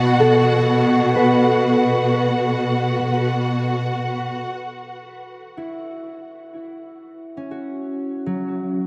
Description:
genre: ambient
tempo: free time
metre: none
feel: none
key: F# minor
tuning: A4 = 440 Hz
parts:
  - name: concert harp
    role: arpeggios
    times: 0.0-8.9 s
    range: F#3 to B5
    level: -25 LUFS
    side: equal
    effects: diffuse ambient delay
  - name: dark studio cello section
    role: bass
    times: 0.0-4.5 s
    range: B2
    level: -21 LUFS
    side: equal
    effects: none
  - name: warm studio violin section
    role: texture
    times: 0.0-4.5 s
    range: F#4 to F#5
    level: -26 LUFS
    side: equal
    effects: none
room: wet huge ambient reverb, RT60 7.4 s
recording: dreamy mix soaked in reverb, nothing above 10.9 kHz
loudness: -19 LUFS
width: mono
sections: 0.0-4.5 A section; 4.5-8.9 B section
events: none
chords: 0.0 B5; 4.5 F#5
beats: free time

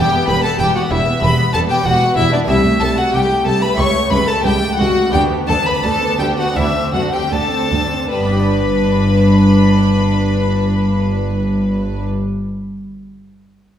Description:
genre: classical, baroque-style concerto movement with solo episodes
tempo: 75-96 BPM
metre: 4/4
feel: straight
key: G major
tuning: A4 = 440 Hz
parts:
  - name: rich chamber violin section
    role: melody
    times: 0.0-12.1 s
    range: D5 to C#6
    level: -22 LUFS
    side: left 3 dB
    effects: none
  - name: warm violin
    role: melody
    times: 0.0-12.1 s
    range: B4 to C#6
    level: -22 LUFS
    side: left 2 dB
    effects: none
  - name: rich studio violin section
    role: second line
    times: 0.0-12.1 s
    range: D4 to C#5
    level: -21 LUFS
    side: left 2 dB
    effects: none
  - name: harpsichord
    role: accompaniment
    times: 0.0-12.9 s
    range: C2 to D5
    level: -23 LUFS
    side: equal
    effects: none
  - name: warm studio viola section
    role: accompaniment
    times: 0.0-12.1 s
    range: G3 to D4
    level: -23 LUFS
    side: right 3 dB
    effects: none
  - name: warm chamber cello section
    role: bass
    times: 0.0-12.1 s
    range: C2 to G2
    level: -19 LUFS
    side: equal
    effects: none
  - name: warm chamber double bass section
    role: bass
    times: 0.0-12.1 s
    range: E1 to D2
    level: -20 LUFS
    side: right 1 dB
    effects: none
room: wet recital hall reverb, RT60 1.5 s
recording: heard from further back in the room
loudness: -13 LUFS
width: side -10 dB against mid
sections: 0.0-8.1 A section; 8.1-11.3 B section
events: slowing down 1.2-8.1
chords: 0.0 Em; 2.5 Am7/C; 3.8 A7/C#; 5.1 G/D; 6.6 D7; 8.1 G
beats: 0.60 1.22 1.85 | 2.49 3.13 3.79 4.45 | 5.13 5.84 6.56 7.32 | 8.11 8.91 9.71 10.51

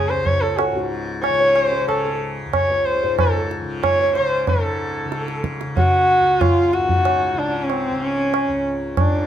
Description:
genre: indian classical, Hindustani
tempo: 93 BPM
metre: 5/4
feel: straight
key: unclear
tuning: A4 = 440 Hz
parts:
  - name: warm sarangi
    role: melody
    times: 0.0-9.3 s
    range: B#3 to C#5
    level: -19 LUFS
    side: left 1 dB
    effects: plate reverb
  - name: tanpura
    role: drone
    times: 0.0-9.3 s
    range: C#2 to C#3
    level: -28 LUFS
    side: left 2 dB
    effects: none
  - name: felt-muted upright piano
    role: second line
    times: 0.1-4.6 s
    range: F#4 to C#5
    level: -28 LUFS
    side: right 1 dB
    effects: none
  - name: tabla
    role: percussion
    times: 0.3-9.2 s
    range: none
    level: -21 LUFS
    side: right 2 dB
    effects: none
room: moderate studio reverb, RT60 0.6 s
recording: none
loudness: -17 LUFS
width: side -10 dB against mid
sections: 0.0-4.5 A section; 4.5-9.3 B section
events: none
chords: none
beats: 0.58 | 1.23 1.88 2.54 3.19 3.83 | 4.48 5.13 5.77 6.42 7.06 | 7.70 8.34 8.98

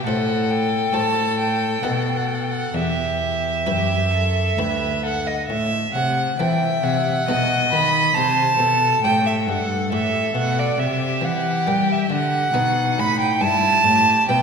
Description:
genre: classical, baroque-style sonata movement with continuo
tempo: 68 BPM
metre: 3/4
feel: straight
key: E minor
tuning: A4 = 440 Hz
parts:
  - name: rich violin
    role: melody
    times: 0.0-14.4 s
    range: D#4 to E5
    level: -26 LUFS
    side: left 7 dB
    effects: none
  - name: buff-stop harpsichord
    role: accompaniment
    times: 0.0-14.4 s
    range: D2 to C5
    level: -29 LUFS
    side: left 2 dB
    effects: none
  - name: warm cello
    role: bass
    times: 0.0-14.4 s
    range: D2 to G3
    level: -23 LUFS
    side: equal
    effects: none
  - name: rich violin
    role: second line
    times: 0.1-14.4 s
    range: D5 to B5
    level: -20 LUFS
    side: right 3 dB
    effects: none
room: wet scoring stage reverb, RT60 1.9 s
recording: minimal, uncompressed stereo recording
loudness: -17 LUFS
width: side -6 dB against mid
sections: 0.0-5.5 A section; 5.5-14.4 A section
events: none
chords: 0.1 Am; 0.9 F#dim/A; 1.8 B7; 2.8 Em; 5.5 Am; 7.3 B7; 8.2 C; 10.8 C7; 12.5 B; 13.4 Em/G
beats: | 0.07 0.95 1.84 | 2.76 3.68 4.59 | 5.49 6.39 7.27 | 8.16 9.04 9.91 | 10.79 11.67 12.55 | 13.43 14.29

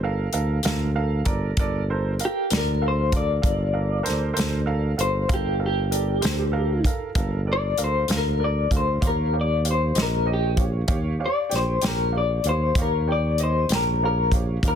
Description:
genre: slow blues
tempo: 64 BPM (dotted quarters)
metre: 12/8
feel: straight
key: G minor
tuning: A4 = 440 Hz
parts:
  - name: clear upright piano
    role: accompaniment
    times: 0.0-14.8 s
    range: G4 to Bb5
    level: -31 LUFS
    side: right 6 dB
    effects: plate reverb
  - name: mellow tuba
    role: bass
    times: 0.0-14.8 s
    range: G1 to Eb2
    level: -24 LUFS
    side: equal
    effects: none
  - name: natural country drum kit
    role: drums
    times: 0.3-14.8 s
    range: hi-hat, kick drum, snare drum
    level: -25 LUFS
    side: equal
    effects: none
  - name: electric guitar through a small old amp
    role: melody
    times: 2.3-14.8 s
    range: G4 to D5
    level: -25 LUFS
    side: left 3 dB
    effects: tremolo, plate reverb
room: little or no reverb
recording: dense, heavily limited modern master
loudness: -20 LUFS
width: side -8 dB against mid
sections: 0.0-14.8 A section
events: upright piano fill 0.6-1.6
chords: 0.0 Gm7; 9.0 Eb7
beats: 0.64 | 1.57 2.50 3.44 4.37 | 5.30 6.23 7.16 8.09 | 9.02 9.96 10.89 11.82 | 12.76 13.69 14.63

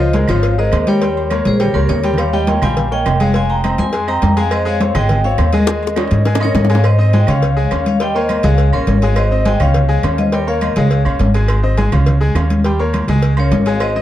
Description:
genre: latin, salsa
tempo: 206 BPM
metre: 4/4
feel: straight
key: unclear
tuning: A4 = 440 Hz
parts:
  - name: vibraphone with hard mallets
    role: melody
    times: 0.0-11.3, 13.4-14.0 s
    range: G4 to C6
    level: -19 LUFS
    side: left 2 dB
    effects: none
  - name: bright grand piano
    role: accompaniment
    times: 0.0-14.0 s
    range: F3 to Ab5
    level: -20 LUFS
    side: left 1 dB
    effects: none
  - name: upright bass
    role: bass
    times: 0.0-14.0 s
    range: F1 to Ab2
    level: -15 LUFS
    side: right 1 dB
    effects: none
  - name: congas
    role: percussion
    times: 0.0-14.0 s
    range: none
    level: -20 LUFS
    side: left 2 dB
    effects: none
  - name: cowbell and bongos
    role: percussion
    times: 0.1-14.0 s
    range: none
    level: -25 LUFS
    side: left 1 dB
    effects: none
  - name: timbales and agogo bells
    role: percussion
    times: 0.1-14.0 s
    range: none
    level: -27 LUFS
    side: right 6 dB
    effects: none
  - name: claves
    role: percussion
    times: 0.3-14.0 s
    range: none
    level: -34 LUFS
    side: right 4 dB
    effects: none
room: little or no reverb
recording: dark, warm production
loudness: -12 LUFS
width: side -12 dB against mid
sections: 0.0-6.8 A section; 6.8-14.0 B section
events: drum fill 1.5-2.2, 5.7-6.8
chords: 0.0 Db69; 1.0 Eb7; 2.2 Eb9; 3.4 Fm9; 4.5 Dbmaj7; 5.7 Eb7sus4; 6.8 Ab; 7.4 Db; 8.0 Eb7; 8.6 Db; 9.2 Ab; 9.7 Db; 10.3 Eb7; 10.9 Db; 11.5 Ab; 12.1 Db; 12.6 Eb7; 13.2 Db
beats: 0.14 0.43 0.72 | 1.01 1.31 1.60 1.89 | 2.18 2.48 2.77 3.06 | 3.35 3.64 3.93 4.22 | 4.51 4.81 5.10 5.39 | 5.68 5.97 6.26 6.55 | 6.84 7.13 7.42 7.71 | 8.01 8.29 8.59 8.88 | 9.17 9.46 9.75 10.04 | 10.33 10.62 10.91 11.20 | 11.49 11.78 12.07 12.36 | 12.65 12.94 13.23 13.52 | 13.81

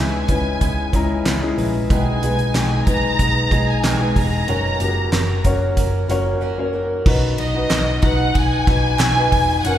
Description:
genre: piano-driven pop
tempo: 93 BPM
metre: 4/4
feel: straight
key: B major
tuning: A4 = 440 Hz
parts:
  - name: warm symphonic violin section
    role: melody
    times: 0.0-9.8 s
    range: D#5 to A#5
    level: -22 LUFS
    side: equal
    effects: none
  - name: felt-muted upright piano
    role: accompaniment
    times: 0.0-9.8 s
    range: B2 to A#5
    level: -22 LUFS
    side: left 3 dB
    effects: none
  - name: picked steel-string acoustic guitar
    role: riff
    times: 0.0-7.1 s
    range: B2 to B4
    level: -28 LUFS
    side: right 4 dB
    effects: none
  - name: vintage muted picked electric bass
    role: bass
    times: 0.0-9.8 s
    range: E1 to C#2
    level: -22 LUFS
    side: equal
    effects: none
  - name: downlifter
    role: sound effects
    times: 0.0-1.9 s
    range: none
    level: barely audible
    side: none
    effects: none
  - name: damped 70s drum kit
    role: drums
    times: 0.3-9.8 s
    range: crash cymbal, handclaps, hi-hat, kick drum, ride cymbal, snare drum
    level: -21 LUFS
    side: right 1 dB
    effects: none
  - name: group handclap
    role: percussion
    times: 7.7-9.1 s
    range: none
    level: -37 LUFS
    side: right 5 dB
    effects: none
room: wet church reverb, RT60 2.7 s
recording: recorded in a church or concert hall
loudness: -16 LUFS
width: side -11 dB against mid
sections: 0.0-7.1 A section; 7.1-9.8 B section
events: break 6.4-7.1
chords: 0.0 C#m7; 1.9 G#m/B; 4.5 F#; 7.1 B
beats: 0.61 1.26 | 1.90 2.55 3.19 3.84 | 4.48 5.13 5.77 6.42 | 7.06 7.71 8.35 9.00 | 9.64

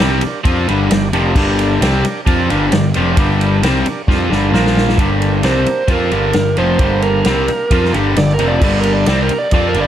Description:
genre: blues rock power trio and southern rock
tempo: 132 BPM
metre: 4/4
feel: straight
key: G minor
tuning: A4 = 441 Hz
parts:
  - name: overdriven tonewheel organ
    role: sustained chords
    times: 0.0-9.9 s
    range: Bb3 to F5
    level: -24 LUFS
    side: right 4 dB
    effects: slow rotary speaker
  - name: crunchy overdriven guitar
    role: riff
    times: 0.0-9.9 s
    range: F2 to F4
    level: -16 LUFS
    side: left 1 dB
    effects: none
  - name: fuzz picked electric bass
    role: bass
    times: 0.0-9.9 s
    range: F1 to F2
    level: -18 LUFS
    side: equal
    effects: overdrive
  - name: vintage drum kit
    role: drums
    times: 0.0-9.9 s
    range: crash cymbal, kick drum, ride cymbal, snare drum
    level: -18 LUFS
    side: equal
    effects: none
  - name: biting lead guitar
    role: second line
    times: 5.5-9.9 s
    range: Bb4 to D5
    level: -18 LUFS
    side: right 3 dB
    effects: overdrive
room: light reverb, small room ambience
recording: none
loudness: -12 LUFS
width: side -10 dB against mid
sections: 0.0-5.0 A section; 5.0-9.9 B section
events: drum fill 4.1-5.0; lead electric guitar solo 5.0-9.9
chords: 0.0 Gm; 4.5 Bb5; 5.0 Gm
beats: 0.00 0.45 0.90 | 1.35 1.81 2.26 2.71 | 3.17 3.62 4.07 4.53 | 4.98 5.44 5.89 6.35 | 6.80 7.26 7.71 8.17 | 8.62 9.08 9.53

